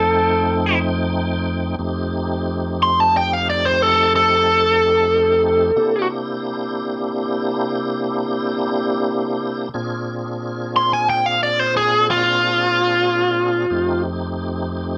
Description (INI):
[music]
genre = blues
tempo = 60 BPM (dotted quarters)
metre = 12/8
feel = straight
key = F mixolydian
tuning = A4 = 441 Hz
[part]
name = biting overdriven guitar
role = melody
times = 0.0-14.0 s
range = F4 to C6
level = -17 LUFS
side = equal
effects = slapback echo
[part]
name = tonewheel organ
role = sustained chords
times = 0.0-15.0 s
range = F2 to G5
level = -24 LUFS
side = equal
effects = slow rotary speaker, overdrive, chorus vibrato
[sound]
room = moderate club reverb, RT60 0.5 s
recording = dark, warm production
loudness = -19 LUFS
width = mono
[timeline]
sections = 0.0-15.0 A section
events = none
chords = 0.0 F9; 5.8 C9; 9.7 Bb9; 13.7 F9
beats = 0.81 | 1.79 2.79 3.78 4.77 | 5.76 6.75 7.74 8.73 | 9.73 10.72 11.71 12.70 | 13.70 14.69